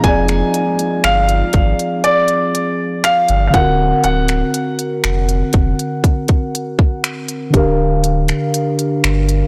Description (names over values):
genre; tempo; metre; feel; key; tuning
contemporary R&B; 60 BPM; 4/4; straight; F dorian; A4 = 439 Hz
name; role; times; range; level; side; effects
warm grand piano; melody; 0.0-6.0 s; D5 to Ab5; -19 LUFS; equal; delay
muted felt-like synth keys; accompaniment; 0.0-9.5 s; D3 to F#5; -20 LUFS; equal; chorus
warm sub bass; bass; 0.0-9.4 s; D1 to Ab1; -20 LUFS; equal; none
trap drum kit; drums; 0.0-9.5 s; finger snaps, hi-hat, kick drum; -19 LUFS; equal; soft clipping on snare
room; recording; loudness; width
light reverb; blown-out, overdriven recording, overdrive; -16 LUFS; mono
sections
0.0-9.5 A section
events
none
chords
0.0 Fm69; 3.5 D7alt; 7.5 Gm7/D